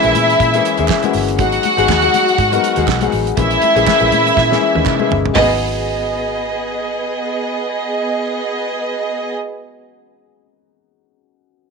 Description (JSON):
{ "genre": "disco", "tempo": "121 BPM", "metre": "4/4", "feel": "swing 56% on 16ths", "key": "G# minor", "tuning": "A4 = 440 Hz", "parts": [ { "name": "warm symphonic violin section", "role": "second line", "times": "0.0-9.3 s", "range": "B3 to F#5", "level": "-16 LUFS", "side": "right 1 dB", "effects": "none" }, { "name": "warm concert grand piano", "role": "accompaniment", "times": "0.0-11.7 s", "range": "E3 to A#4", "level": "-19 LUFS", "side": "left 13 dB", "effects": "none" }, { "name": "vintage muted fingered electric bass", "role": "bass", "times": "0.0-9.3 s", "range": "G1 to A#2", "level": "-21 LUFS", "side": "right 2 dB", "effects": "tube saturation" }, { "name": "damped 70s drum kit", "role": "drums", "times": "0.0-5.5 s", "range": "hi-hat, kick drum, snare drum, toms", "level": "-22 LUFS", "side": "right 6 dB", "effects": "none" }, { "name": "congas", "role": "percussion", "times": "0.2-5.6 s", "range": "none", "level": "-27 LUFS", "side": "left 12 dB", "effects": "none" }, { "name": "group handclap", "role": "percussion", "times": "0.9-5.6 s", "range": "none", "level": "-28 LUFS", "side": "right 15 dB", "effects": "none" } ], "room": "light reverb, small room ambience", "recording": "1960s-style stereo with parts hard left and right", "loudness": "-13 LUFS", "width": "side -4 dB against mid", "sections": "0.0-5.4 A section; 5.4-9.3 B section", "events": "drum fill 4.4-5.4", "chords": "0.0 A#m7b5; 1.4 G#m7; 3.4 A#m7b5; 5.4 G#m7" }